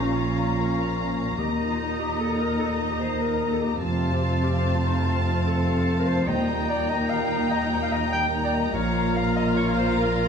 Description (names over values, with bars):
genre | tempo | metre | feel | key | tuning
cinematic | 98 BPM (dotted quarters) | 12/8 | straight | Eb lydian | A4 = 440 Hz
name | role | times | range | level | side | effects
rich symphonic violin section | melody | 0.0-10.3 s | A5 to Bb5 | -32 LUFS | left 4 dB | none
clear clarinet | second line | 0.0-10.3 s | Eb4 to G5 | -30 LUFS | left 2 dB | none
clear oboe | second line | 0.0-10.3 s | F5 to Bb5 | -36 LUFS | right 2 dB | none
hollow concert flute | second line | 0.0-10.3 s | Bb5 to Eb6 | -36 LUFS | left 3 dB | none
warm symphonic violin section | second line | 0.0-10.3 s | Eb5 to G5 | -35 LUFS | equal | none
warm symphonic viola section | accompaniment | 0.0-10.3 s | C4 to F4 | -33 LUFS | equal | none
dark trombone section | sustained chords | 0.0-10.3 s | Bb2 to G3 | -31 LUFS | right 3 dB | none
warm French horn section | sustained chords | 0.0-10.3 s | A3 to F4 | -31 LUFS | left 6 dB | none
warm studio double bass section | bass | 0.0-10.3 s | F1 to Eb2 | -29 LUFS | right 2 dB | none
warm symphonic cello section | bass | 0.0-10.3 s | Eb2 to Bb2 | -29 LUFS | right 1 dB | none
timpani | percussion | 1.4-2.0, 6.3-6.9 s | Eb3 | -34 LUFS | left 2 dB | none
room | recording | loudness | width
moderate scoring stage reverb, RT60 1.5 s | small room ambience | -22 LUFS | side -6 dB against mid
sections
0.0-10.3 A section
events
none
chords
0.0 Bbm; 1.4 Eb5; 3.8 F; 6.3 Eb; 8.7 Bbm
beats
0.15 0.76 | 1.38 1.99 2.60 3.21 | 3.83 4.44 5.06 5.67 | 6.29 6.90 7.52 8.13 | 8.75 9.36 9.98